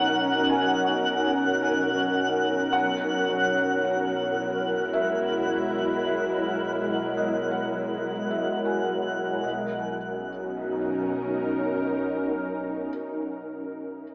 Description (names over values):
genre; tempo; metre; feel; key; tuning
ambient; 54 BPM; 3/4; straight; unclear; A4 = 442 Hz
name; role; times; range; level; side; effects
ethereal airy pad; sustained chords; 0.0-13.6 s; B2 to A#4; -25 LUFS; equal; ensemble chorus, built-in reverb
felt-muted upright piano; arpeggios; 0.0-14.1 s; C#5 to C#6; -33 LUFS; equal; dub echo
warm sub bass; bass; 0.0-12.9 s; B1; -48 LUFS; equal; none
twinkling granular texture; texture; 0.0-9.5 s; F#5; -29 LUFS; equal; built-in reverb
room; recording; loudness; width
wet plate reverb, RT60 2.4 s; echo-heavy mix, AM radio sound; -23 LUFS; side -31 dB against mid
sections
0.0-9.4 A section; 9.4-12.8 B section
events
fade-out on felt piano 0.0-9.4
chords
0.0 F#7/B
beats
0.50 1.62 | 2.73 3.84 4.95 | 6.06 7.18 8.31 | 9.45 10.58 11.70